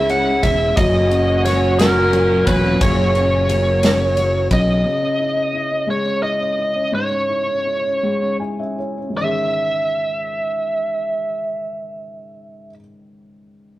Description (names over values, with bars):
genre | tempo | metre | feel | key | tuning
six-eight pop ballad | 51-59 BPM (dotted quarters) | 6/8 | straight | C# dorian | A4 = 436 Hz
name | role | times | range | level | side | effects
biting lead guitar | melody | 0.0-12.7 s | A#4 to F#5 | -19 LUFS | right 1 dB | overdrive
mellow French horn section | second line | 0.0-4.5 s | A#3 to G#4 | -23 LUFS | right 2 dB | none
felt-muted upright piano | accompaniment | 0.0-13.8 s | C#2 to G#5 | -24 LUFS | left 2 dB | none
muted studio string section | sustained chords | 0.0-4.8 s | A#2 to E4 | -23 LUFS | equal | none
fretless electric bass | bass | 0.0-4.8 s | E1 to C#2 | -20 LUFS | equal | none
natural country drum kit | drums | 0.1-4.7 s | kick drum, ride cymbal, snare drum | -22 LUFS | equal | none
room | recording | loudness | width
moderate stone room reverb, RT60 0.9 s | rough rehearsal-room recording | -16 LUFS | side -16 dB against mid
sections
0.0-4.9 A section; 4.9-9.2 B section; 9.2-13.8 C section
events
slowing down 4.9-9.2; felt piano fill 8.0-9.2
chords
0.0 C#m; 0.8 F#; 4.9 C#madd9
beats
| 0.78 1.79 | 2.81 3.83 | 4.85 5.88 | 6.93 8.02 | 9.17 10.35 | 11.53 12.70